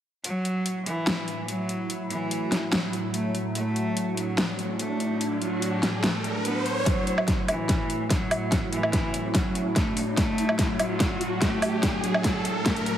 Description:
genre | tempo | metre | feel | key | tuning
heavy wobble dubstep | 145 BPM | 4/4 | half-time | F# minor | A4 = 440 Hz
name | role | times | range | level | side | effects
rich cello | melody | 0.2-12.9 s | E3 to B3 | -30 LUFS | equal | low-pass filter, digital delay
evolving wavetable pad | sustained chords | 1.0-13.0 s | A2 to E4 | -31 LUFS | equal | phaser, built-in reverb, sidechain pumping
dubstep drum kit | drums | 0.2-12.9 s | hi-hat, snare drum, woodblock | -27 LUFS | equal | small room ambience
riser | sound effects | 4.7-13.0 s | none | -32 LUFS | right 1 dB | none
electronic kick drum | drums | 6.9-12.7 s | none | -27 LUFS | equal | small room ambience
room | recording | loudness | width
moderate lush hall reverb, RT60 2.1 s | heavily compressed radio sound | -24 LUFS | side -10 dB against mid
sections
0.2-6.9 A section; 6.9-13.0 B section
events
riser 4.7-6.9, 6.9-13.0; build-up 6.9-13.0; drum fill 6.9-13.0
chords
0.2 F#m7; 3.6 D; 6.9 F#m7; 10.2 D

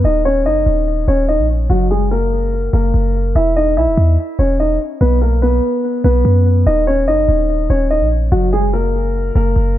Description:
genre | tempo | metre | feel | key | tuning
hip hop, trap | 145 BPM | 4/4 | half-time | unclear | A4 = 435 Hz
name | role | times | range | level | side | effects
dark concert grand piano | melody | 0.0-9.8 s | F#3 to E5 | -16 LUFS | left 1 dB | low-pass filter, ping-pong delay
clean 808-style bass | bass | 0.0-9.8 s | D#1 to F#2 | -15 LUFS | equal | none
room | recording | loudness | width
studio reverb | none | -12 LUFS | side -13 dB against mid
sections
0.0-9.8 A section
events
none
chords
0.0 D#7(no3); 1.7 F#; 3.4 E5; 5.0 B5; 6.7 D#7(no3); 8.3 F#

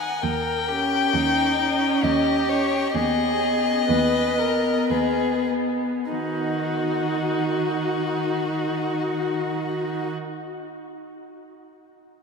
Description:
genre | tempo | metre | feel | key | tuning
classical, slow romantic movement for string quartet | 46-67 BPM | 3/4 | rubato | Eb minor | A4 = 440 Hz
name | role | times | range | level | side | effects
dark violin | melody | 0.0-10.1 s | Gb4 to Ab5 | -25 LUFS | left 4 dB | none
rich violin | second line | 0.0-10.1 s | Eb4 to Gb5 | -28 LUFS | left 2 dB | none
dark cello | bass | 0.2-10.1 s | Eb2 to Eb3 | -30 LUFS | right 6 dB | none
rich viola | accompaniment | 0.7-10.1 s | Cb4 to Eb4 | -26 LUFS | right 1 dB | none
room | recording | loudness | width
wet cathedral reverb, RT60 5.3 s | in a vast, echoing space | -20 LUFS | side -5 dB against mid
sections
0.2-6.1 A section; 6.1-9.6 B section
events
slowing down 0.0-6.1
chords
0.2 Eb7; 2.9 Abm/Eb; 6.1 Ebm

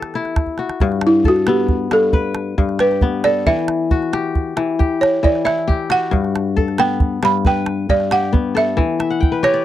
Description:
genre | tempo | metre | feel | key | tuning
west african traditional, West African string and xylophone music | 90 BPM (dotted quarters) | 12/8 | straight | G major | A4 = 439 Hz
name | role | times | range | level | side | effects
balafon | melody | 0.0-9.6 s | E4 to B5 | -17 LUFS | right 2 dB | none
kora | arpeggios | 0.0-9.6 s | G2 to G5 | -19 LUFS | left 5 dB | none
calabash | percussion | 0.0-9.5 s | none | -18 LUFS | right 1 dB | none
room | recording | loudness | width
light reverb | dark, warm production | -15 LUFS | side -12 dB against mid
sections
0.8-9.6 A section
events
drum fill 0.5-0.8; balafon solo 0.8-9.6; kora fill 9.0-9.6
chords
0.0 Em; 0.8 G; 3.5 Em; 6.1 G; 8.8 Em

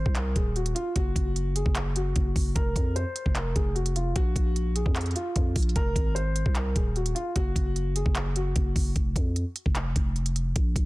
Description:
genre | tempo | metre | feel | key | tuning
hip hop, trap | 150 BPM | 4/4 | half-time | unclear | A4 = 440 Hz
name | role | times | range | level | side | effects
dark concert grand piano | melody | 0.0-8.9 s | F4 to C5 | -33 LUFS | left 1 dB | digital delay
growling 808-style bass | bass | 0.0-10.9 s | Eb1 to F2 | -28 LUFS | equal | none
trap drum kit | drums | 0.1-10.9 s | handclaps, hi-hat, kick drum | -26 LUFS | equal | none
room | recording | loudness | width
little or no reverb | dense, heavily limited modern master | -24 LUFS | side -20 dB against mid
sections
0.0-10.9 A section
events
none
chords
0.0 N.C.; 1.0 Gbsus2; 2.6 F5; 4.2 Bb5; 5.8 Fm; 7.4 Gbsus2; 9.0 N.C.

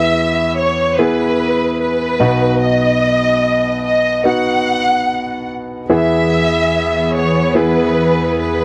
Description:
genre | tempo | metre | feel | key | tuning
pop | 73 BPM | 4/4 | straight | E major | A4 = 440 Hz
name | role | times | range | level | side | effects
warm studio violin section | melody | 0.0-8.6 s | B4 to F#5 | -18 LUFS | equal | none
clear baby grand piano | accompaniment | 0.0-8.6 s | B1 to G#4 | -19 LUFS | equal | none
warm studio string section | sustained chords | 5.9-8.6 s | E2 to G#4 | -21 LUFS | equal | none
room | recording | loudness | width
light reverb | dry, close 1970s-style studio recording | -15 LUFS | mono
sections
0.0-8.6 A section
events
none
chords
0.0 E; 2.2 B; 5.9 E

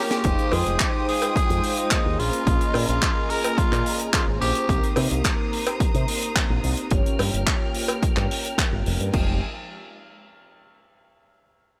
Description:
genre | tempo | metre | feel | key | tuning
nu-disco, nu disco | 108 BPM | 4/4 | straight | F minor | A4 = 440 Hz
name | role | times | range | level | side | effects
raspy tenor saxophone | melody | 0.0-4.9 s | Eb4 to Bb4 | -30 LUFS | equal | analog delay
mellow synth brass | accompaniment | 0.0-9.3 s | F3 to G5 | -31 LUFS | equal | chorus, sidechain pumping, analog delay
bright studio string section | sustained chords | 0.0-9.4 s | Ab3 to F6 | -37 LUFS | equal | sidechain pumping, low-pass filter
tight funk drum kit | drums | 0.1-9.2 s | crash cymbal, handclaps, hi-hat, snare drum | -30 LUFS | equal | none
fingered electric bass with an envelope filter | bass | 0.2-9.4 s | F1 to C3 | -28 LUFS | equal | sidechain pumping
electronic kick drum | drums | 0.2-9.2 s | none | -26 LUFS | equal | overdrive
cowbell | percussion | 0.5-8.0 s | none | -30 LUFS | equal | none
room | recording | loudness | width
light reverb, small room ambience | none | -23 LUFS | mono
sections
0.2-9.1 A section; 9.1-11.4 B section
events
break 0.0; drum fill 0.0; filter sweep on analog polysynth 0.2-9.1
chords
0.2 Fm9; 2.2 Bbm7; 4.7 Cm7; 6.9 Gm7b5; 9.1 Fm9

